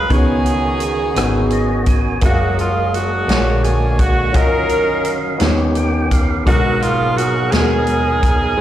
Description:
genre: slow gospel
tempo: 57 BPM (dotted quarters)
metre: 6/8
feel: straight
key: unclear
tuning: A4 = 440 Hz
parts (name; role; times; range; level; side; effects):
- clear saxophone section; melody; 0.0-8.6 s; A#3 to A#4; -24 LUFS; left 2 dB; slapback echo
- raspy alto saxophone; melody; 0.0-8.6 s; E#4 to B4; -20 LUFS; right 3 dB; slapback echo
- warm upright piano; accompaniment; 0.0-8.6 s; G#2 to E#5; -20 LUFS; left 2 dB; slapback echo
- tonewheel organ; sustained chords; 0.0-8.6 s; B2 to G#5; -22 LUFS; right 2 dB; slow rotary speaker
- hollow-body short-scale fingered electric bass; bass; 0.0-8.5 s; F#1 to D#2; -20 LUFS; equal; none
- swinging big-band drum kit; drums; 0.1-8.4 s; hi-hat, kick drum, rim click, snare drum; -18 LUFS; equal; none
room: light reverb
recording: live gig heard through the venue's PA, recital hall reverb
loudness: -14 LUFS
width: side -12 dB against mid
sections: 0.0-8.6 A section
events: tonewheel organ fill 1.2-2.2, 5.4-6.5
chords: 0.1 C#9sus4; 2.2 F#maj9; 3.3 A#7alt; 4.3 D#m9/F#; 5.4 D#7b13; 6.5 G#m9

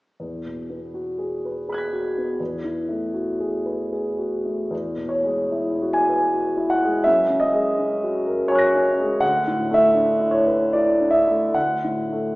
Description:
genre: classical, impressionist solo piano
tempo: 68-87 BPM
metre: 3/4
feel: rubato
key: E major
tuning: A4 = 441 Hz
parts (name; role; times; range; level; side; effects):
- warm grand piano; solo; 0.2-12.4 s; D2 to B6; -19 LUFS; equal; none
room: wet recital hall reverb, RT60 1.6 s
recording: recorded in a church or concert hall, small speaker sound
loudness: -19 LUFS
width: side -21 dB against mid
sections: 0.2-4.7 A section; 4.7-12.4 B section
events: none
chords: 0.2 Eadd9; 2.4 F#m11/E; 4.7 E69; 7.1 F#add9; 9.2 Dsus2; 11.5 D

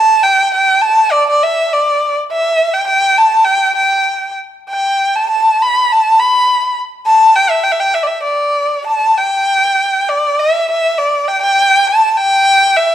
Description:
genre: chinese traditional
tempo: 101 BPM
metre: 2/4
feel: straight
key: unclear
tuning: A4 = 440 Hz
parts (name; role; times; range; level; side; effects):
- clear erhu; solo; 0.0-12.9 s; D5 to B5; -10 LUFS; equal; none
room: light reverb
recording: minimal, uncompressed stereo recording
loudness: -10 LUFS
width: side -11 dB against mid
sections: 0.0-9.5 A section; 9.5-12.9 B section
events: none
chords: none

